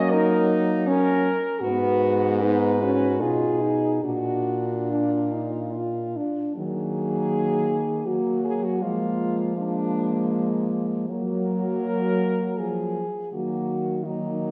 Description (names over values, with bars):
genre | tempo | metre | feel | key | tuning
classical, lyrical piece for horn quartet | 68-83 BPM | 3/4 | rubato | Eb minor | A4 = 440 Hz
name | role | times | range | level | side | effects
mellow French horn | melody | 0.0-14.5 s | D4 to Eb5 | -29 LUFS | equal | none
mellow French horn | second line | 0.0-14.5 s | Bb3 to Gb4 | -30 LUFS | equal | none
dark French horn | accompaniment | 0.0-14.5 s | Gb3 to F4 | -30 LUFS | equal | none
mellow French horn | bass | 0.0-14.5 s | Ab2 to Gb3 | -31 LUFS | equal | none
room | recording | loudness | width
wet scoring stage reverb, RT60 1.6 s | heard from further back in the room | -24 LUFS | mono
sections
0.0-6.6 A section; 6.6-14.5 B section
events
none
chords
0.0 Ebm/Gb; 1.6 Abm7; 4.0 Bb; 6.6 Ebm; 8.8 Bb7/F; 11.1 Gbmaj9; 13.3 Ebm